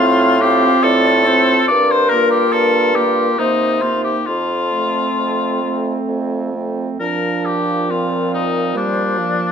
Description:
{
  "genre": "classical, slow romantic movement for wind quintet",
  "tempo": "65-72 BPM",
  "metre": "3/4",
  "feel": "rubato",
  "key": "unclear",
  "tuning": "A4 = 440 Hz",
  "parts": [
    { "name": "concert flute", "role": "melody", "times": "0.0-9.5 s", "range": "A4 to F5", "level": "-23 LUFS", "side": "left 10 dB", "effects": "none" },
    { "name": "clear oboe", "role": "second line", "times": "0.0-9.5 s", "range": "D4 to D5", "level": "-17 LUFS", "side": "left 3 dB", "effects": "none" },
    { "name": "clear clarinet", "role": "accompaniment", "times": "0.0-9.5 s", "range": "Bb3 to F4", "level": "-23 LUFS", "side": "right 9 dB", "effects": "none" },
    { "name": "warm French horn", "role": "accompaniment", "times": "0.0-9.5 s", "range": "F3 to C4", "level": "-22 LUFS", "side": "equal", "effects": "none" },
    { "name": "warm bassoon", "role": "bass", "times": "0.0-9.5 s", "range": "F2 to C3", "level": "-20 LUFS", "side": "right 3 dB", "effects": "none" }
  ],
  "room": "moderate recital hall reverb, RT60 1.5 s",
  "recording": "none",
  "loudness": "-14 LUFS",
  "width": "side -7 dB against mid",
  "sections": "0.0-9.5 A section",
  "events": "none",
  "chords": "0.0 F/A; 1.7 Gm7; 3.4 Cm7; 4.3 F; 7.0 Bb"
}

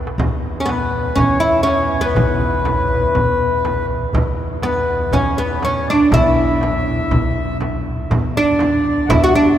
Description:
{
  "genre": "Arabic maqam ensemble",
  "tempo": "121 BPM",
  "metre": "4/4",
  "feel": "straight",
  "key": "unclear",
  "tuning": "A4 = 439 Hz",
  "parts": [
    { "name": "upright bass", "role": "bass", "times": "0.0-9.6 s", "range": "B1 to E3", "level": "-24 LUFS", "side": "left 1 dB", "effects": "none" },
    { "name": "dark double bass", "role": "drone", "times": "0.0-8.2 s", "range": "E2", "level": "-27 LUFS", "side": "equal", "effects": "none" },
    { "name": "darbuka", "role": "percussion", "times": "0.1-9.2 s", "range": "none", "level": "-25 LUFS", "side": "right 1 dB", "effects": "none" },
    { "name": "frame drum", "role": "percussion", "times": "0.2-9.2 s", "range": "none", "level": "-24 LUFS", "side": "right 1 dB", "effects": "none" },
    { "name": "oud", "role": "melody", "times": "0.6-9.6 s", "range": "B3 to F#4", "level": "-18 LUFS", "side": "right 1 dB", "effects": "none" },
    { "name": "accordion", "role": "second line", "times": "0.7-9.6 s", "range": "B4 to F#5", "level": "-22 LUFS", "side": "left 3 dB", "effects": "none" }
  ],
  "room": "wet cathedral reverb, RT60 5.1 s",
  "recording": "recorded in a church or concert hall",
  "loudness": "-14 LUFS",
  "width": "side -11 dB against mid",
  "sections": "0.0-8.1 A section; 8.1-9.6 B section",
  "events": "drum fill 0.0",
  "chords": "none"
}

